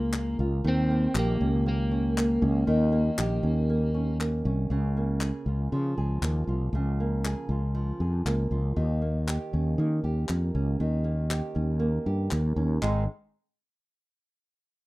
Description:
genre	acoustic pop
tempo	118 BPM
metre	4/4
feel	straight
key	unclear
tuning	A4 = 439 Hz
part	electric slide guitar	melody	0.0-4.2 s	Bb3 to C4	-29 LUFS	left 1 dB	none
part	nylon-string guitar	accompaniment	0.0-13.0 s	Ab2 to Ab4	-32 LUFS	right 2 dB	none
part	fretless electric bass	bass	0.0-13.1 s	Ab1 to Eb3	-26 LUFS	equal	none
part	group handclap	percussion	0.1-13.1 s	none	-34 LUFS	left 3 dB	none
room	little or no reverb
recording	rough home demo mix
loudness	-24 LUFS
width	side -20 dB against mid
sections	0.0-4.7 A section; 4.7-12.8 B section; 12.8-14.9 C section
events	none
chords	0.0 Db6; 0.7 Eb7; 4.7 Db6; 8.8 Eb7; 12.8 Ab5

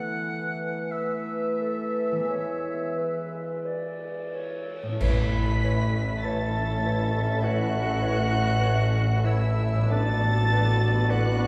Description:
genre	classical, slow romantic movement for symphony orchestra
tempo	42-52 BPM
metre	4/4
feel	rubato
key	A major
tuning	A4 = 440 Hz
part	clear oboe	second line	0.0-11.5 s	E4 to F#5	-37 LUFS	equal	none
part	silver concert flute	second line	0.0-11.5 s	E5 to F#6	-36 LUFS	equal	none
part	warm clarinet	second line	0.0-11.3 s	A4 to D5	-41 LUFS	equal	none
part	mellow bassoon	accompaniment	0.0-11.3 s	D3 to E3	-36 LUFS	equal	none
part	mellow French horn section	sustained chords	0.0-11.5 s	G#3 to B4	-37 LUFS	equal	none
part	concert harp	arpeggios	0.0-11.5 s	A2 to B4	-36 LUFS	equal	none
part	muted studio violin section	melody	5.0-11.5 s	E6 to B6	-39 LUFS	equal	none
part	muted studio violin section	second line	5.0-11.5 s	A4 to E5	-38 LUFS	equal	none
part	muted symphonic viola section	accompaniment	5.0-11.5 s	B3 to F#4	-39 LUFS	equal	none
part	clear tuba	bass	5.0-11.5 s	A1	-31 LUFS	equal	none
part	muted symphonic cello section	bass	5.0-11.5 s	A2	-31 LUFS	equal	none
part	muted symphonic double bass section	bass	5.0-11.5 s	A1	-32 LUFS	equal	none
part	clash cymbals and concert bass drum	percussion	5.0-7.4 s	none	-34 LUFS	equal	none
room	wet concert hall reverb, RT60 1.8 s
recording	heard from further back in the room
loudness	-26 LUFS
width	mono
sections	0.0-5.0 A section; 5.0-11.5 B section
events	band accent 5.0-6.2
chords	0.0 Esus4; 2.3 E; 5.0 A; 9.9 Bm7/A

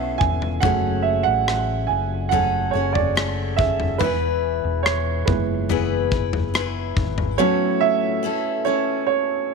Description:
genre	pop ballad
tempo	71 BPM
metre	4/4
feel	straight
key	A major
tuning	A4 = 439 Hz
part	dark baby grand piano	accompaniment	0.0-9.5 s	C#3 to G#5	-22 LUFS	right 12 dB	none
part	picked steel-string acoustic guitar	arpeggios	0.0-9.5 s	A2 to B4	-25 LUFS	left 15 dB	none
part	hollow-body short-scale fingered electric bass	bass	0.0-7.4 s	E1 to B1	-26 LUFS	left 2 dB	none
part	modern studio drum kit	drums	0.2-7.4 s	kick drum, rim click, toms	-24 LUFS	left 3 dB	none
room	light reverb, small room ambience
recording	1960s-style stereo with parts hard left and right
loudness	-19 LUFS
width	side -4 dB against mid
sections	0.0-7.4 A section; 7.4-9.5 B section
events	grand piano solo 0.0-7.4, 7.4-9.5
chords	0.0 Aadd9; 0.6 F#madd9; 4.0 E; 7.4 A6

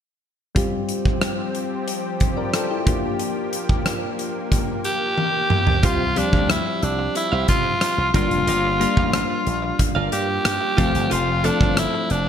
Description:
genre	1980s-style pop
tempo	91 BPM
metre	4/4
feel	straight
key	unclear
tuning	A4 = 440 Hz
part	soft electric-piano-like synth keys	accompaniment	0.5-12.3 s	F3 to D5	-26 LUFS	left 3 dB	chorus
part	lush unison pad	sustained chords	0.6-5.8 s	F3 to G4	-29 LUFS	left 1 dB	chorus
part	big rock drum kit	drums	0.6-12.3 s	hi-hat, kick drum, rim click, toms	-22 LUFS	equal	none
part	raspy alto saxophone	melody	4.9-12.3 s	D4 to G4	-22 LUFS	equal	none
part	direct-recorded clean electric guitar	riff	5.8-12.3 s	F4 to F5	-30 LUFS	right 4 dB	lush chorus, ping-pong delay
part	slap bass with an envelope filter	bass	5.8-12.3 s	F1 to C3	-25 LUFS	equal	none
room	moderate lush hall reverb, RT60 1.8 s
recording	bright 1980s-style digital production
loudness	-18 LUFS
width	side -8 dB against mid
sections	0.6-5.8 A section; 5.8-12.3 B section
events	drum fill 5.2-5.8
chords	0.6 Csus4; 2.9 Gm7; 5.5 Csus4; 8.1 Gm7; 10.8 F

